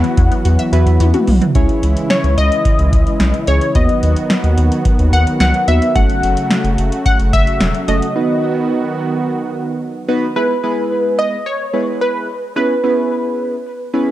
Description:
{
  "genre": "synth-pop",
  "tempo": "109 BPM",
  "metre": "4/4",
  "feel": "straight",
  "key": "E major",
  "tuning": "A4 = 439 Hz",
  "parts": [
    { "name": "funky polysynth comp", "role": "melody", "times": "0.0-14.1 s", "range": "B4 to F#5", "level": "-19 LUFS", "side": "left 1 dB", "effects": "chorus" },
    { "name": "warm analog keys", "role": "accompaniment", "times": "0.0-14.1 s", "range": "G#3 to C#5", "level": "-20 LUFS", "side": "right 1 dB", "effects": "chorus" },
    { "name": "brassy analog pad", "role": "sustained chords", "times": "0.0-10.3 s", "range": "C#3 to F#4", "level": "-20 LUFS", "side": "right 1 dB", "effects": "chorus" },
    { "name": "resonant blip pluck", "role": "arpeggios", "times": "0.0-1.5 s", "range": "E3 to E5", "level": "-24 LUFS", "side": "left 4 dB", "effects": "phaser, tape echo" },
    { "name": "round analog bass", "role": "bass", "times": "0.0-8.0 s", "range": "E1 to E2", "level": "-14 LUFS", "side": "equal", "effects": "none" },
    { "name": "electro analog drum machine", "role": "drums", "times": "0.0-8.2 s", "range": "hi-hat, kick drum, snare drum, toms", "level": "-16 LUFS", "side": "equal", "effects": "none" }
  ],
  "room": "light reverb, digital ambience",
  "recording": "dark, warm production",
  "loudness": "-13 LUFS",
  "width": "side -14 dB against mid",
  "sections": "0.0-1.6 A section; 1.6-10.4 B section; 10.4-14.1 A section",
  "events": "drum fill 1.0-1.6; break 8.2-10.4",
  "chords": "0.0 Esus2; 1.6 C#m; 3.8 B/D#; 6.0 F#m; 8.2 B; 10.4 E; 12.6 C#m7",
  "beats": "0.45 1.00 | 1.55 2.10 2.65 3.20 | 3.75 4.30 4.86 5.41 | 5.96 6.51 7.06 7.61 | 8.16 8.71 9.26 9.81 | 10.36 10.91 11.46 12.01 | 12.56 13.11 13.66"
}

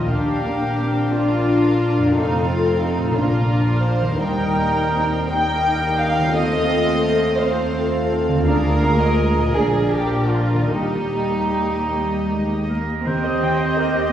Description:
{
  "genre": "classical",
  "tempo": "50-60 BPM (dotted quarters)",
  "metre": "6/8",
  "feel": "rubato",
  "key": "Eb major",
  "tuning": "A4 = 441 Hz",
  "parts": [
    { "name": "warm symphonic violin section", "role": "melody", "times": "0.0-14.1 s", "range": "D5 to G5", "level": "-29 LUFS", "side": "equal", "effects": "none" },
    { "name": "warm symphonic violin section", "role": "second line", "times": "0.0-12.6 s", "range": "Eb4 to G5", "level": "-23 LUFS", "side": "equal", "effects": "none" },
    { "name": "rich studio viola section", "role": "accompaniment", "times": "0.0-14.1 s", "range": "Bb3 to G5", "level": "-25 LUFS", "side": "equal", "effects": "none" },
    { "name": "warm French horn section", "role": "sustained chords", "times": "0.0-13.9 s", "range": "G3 to Bb4", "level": "-26 LUFS", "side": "left 1 dB", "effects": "none" },
    { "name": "concert harp", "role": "arpeggios", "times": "0.0-14.1 s", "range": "F2 to Bb4", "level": "-28 LUFS", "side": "left 2 dB", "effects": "none" },
    { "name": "warm symphonic cello section", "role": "bass", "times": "0.0-14.1 s", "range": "F3 to D4", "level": "-25 LUFS", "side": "right 1 dB", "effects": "none" },
    { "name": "warm symphonic double bass section", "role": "bass", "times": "0.0-13.9 s", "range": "F1 to Eb2", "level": "-23 LUFS", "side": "equal", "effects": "none" },
    { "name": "warm oboe", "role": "second line", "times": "12.7-14.1 s", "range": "Bb4 to C5", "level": "-25 LUFS", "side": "right 2 dB", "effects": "none" },
    { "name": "warm clarinet", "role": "second line", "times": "13.0-14.1 s", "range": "G4", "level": "-28 LUFS", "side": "right 3 dB", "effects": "none" },
    { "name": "bright silver concert flute", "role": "second line", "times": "13.1-14.1 s", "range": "Eb5", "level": "-27 LUFS", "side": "left 3 dB", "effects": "none" }
  ],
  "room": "wet scoring stage reverb, RT60 1.8 s",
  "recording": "heard from further back in the room, vinyl crackle, studio ambience",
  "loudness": "-17 LUFS",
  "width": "side -10 dB against mid",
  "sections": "0.0-13.1 A section; 13.1-14.1 A section",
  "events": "none",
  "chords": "0.1 Bb; 2.2 F; 3.2 Bb; 4.2 Eb; 6.4 F7/Eb; 8.5 Bb7/D; 9.6 Bb; 10.7 Eb",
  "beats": "| 0.08 1.13 | 2.16 3.16 | 4.19 5.30 | 6.35 7.40 | 8.47 9.56 | 10.72 11.90 | 13.06 14.12"
}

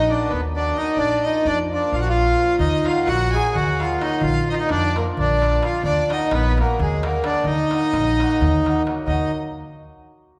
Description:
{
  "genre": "balkan folk, Balkan wedding band",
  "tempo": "260 BPM (eighths)",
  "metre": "7/8",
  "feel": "straight",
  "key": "Eb harmonic minor",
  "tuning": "A4 = 440 Hz",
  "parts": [
    { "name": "accordion", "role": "melody", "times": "0.0-9.3 s", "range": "Ab3 to Ab4", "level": "-23 LUFS", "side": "equal", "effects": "none" },
    { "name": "clear violin", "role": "second line", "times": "0.0-9.3 s", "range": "Ab4 to Ab5", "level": "-32 LUFS", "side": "equal", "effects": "none" },
    { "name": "cimbalom", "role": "accompaniment", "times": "0.0-9.3 s", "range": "F3 to Gb4", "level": "-32 LUFS", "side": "equal", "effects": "none" },
    { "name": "upright bass", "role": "bass", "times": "0.0-9.3 s", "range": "Bb1 to F2", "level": "-26 LUFS", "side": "equal", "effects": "none" },
    { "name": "darbuka", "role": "percussion", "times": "2.6-9.3 s", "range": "none", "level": "-30 LUFS", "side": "equal", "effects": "none" }
  ],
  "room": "wet recital hall reverb, RT60 1.8 s",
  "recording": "recorded in a church or concert hall",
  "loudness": "-20 LUFS",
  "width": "mono",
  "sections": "0.0-9.1 A section; 9.1-10.4 B section",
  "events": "none",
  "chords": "0.0 Ebm; 1.0 Bb; 2.6 Ebm; 4.2 Bb; 5.8 Ebm",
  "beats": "0.04 0.28 0.51 0.74 | 0.97 1.20 1.43 1.67 1.90 2.13 2.36 | 2.59 2.82 3.05 3.29 3.52 3.75 3.98 | 4.21 4.44 4.67 4.90 5.14 5.37 5.60 | 5.83 6.06 6.29 6.52 6.75 6.99 7.22 | 7.45 7.68 7.91 8.14 8.37 8.60 8.84 | 9.07 9.30"
}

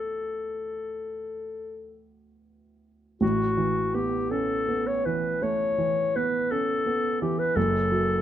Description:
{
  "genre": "classical, impressionist duo for clarinet and grand piano",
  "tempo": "48-58 BPM (dotted quarters)",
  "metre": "12/8",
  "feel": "rubato",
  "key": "A mixolydian",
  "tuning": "A4 = 441 Hz",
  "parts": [
    { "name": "warm clarinet", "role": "melody", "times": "0.0-8.2 s", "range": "F#4 to C#5", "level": "-26 LUFS", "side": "left 2 dB", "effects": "none" },
    { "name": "warm concert grand piano", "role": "accompaniment", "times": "0.0-8.2 s", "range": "F#1 to F#4", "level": "-27 LUFS", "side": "right 3 dB", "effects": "none" }
  ],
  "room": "light reverb",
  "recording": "none",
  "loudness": "-24 LUFS",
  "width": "side -11 dB against mid",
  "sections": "0.0-3.2 A section; 3.2-8.2 A section",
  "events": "none",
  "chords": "0.0 A69; 3.2 Aadd9; 7.6 F#m",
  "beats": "0.79 2.00 | 3.22 4.31 5.42 6.52 | 7.57"
}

